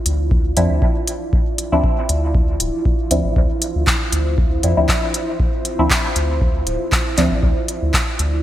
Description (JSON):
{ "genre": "dub techno", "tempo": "118 BPM", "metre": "4/4", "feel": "swing 55% on 16ths", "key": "D minor", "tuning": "A4 = 438 Hz", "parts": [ { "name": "deep dark ambient pad", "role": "sustained chords", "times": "0.0-8.4 s", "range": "E4 to D5", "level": "-25 LUFS", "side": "right 2 dB", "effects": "chorus, built-in reverb, sidechain pumping" }, { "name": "soft dub sub bass", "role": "bass", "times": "0.1-8.4 s", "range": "D1 to F2", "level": "-19 LUFS", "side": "equal", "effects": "tube saturation, sidechain pumping" }, { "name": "deep house drum kit", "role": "drums", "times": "0.1-8.3 s", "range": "handclaps, hi-hat", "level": "-20 LUFS", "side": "equal", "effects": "small room ambience, gated reverb" }, { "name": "electronic kick drum", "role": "drums", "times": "0.3-8.1 s", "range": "none", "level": "-19 LUFS", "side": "equal", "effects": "small room ambience" }, { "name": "deep mellow chord stab", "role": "stabs", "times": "0.6-7.3 s", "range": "F3 to E4", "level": "-22 LUFS", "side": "equal", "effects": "chorus, phaser, sidechain pumping, dub echo" } ], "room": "light reverb", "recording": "bright 1980s-style digital production", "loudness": "-15 LUFS", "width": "side -13 dB against mid", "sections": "0.0-8.4 A section", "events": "none", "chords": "0.0 Dm9" }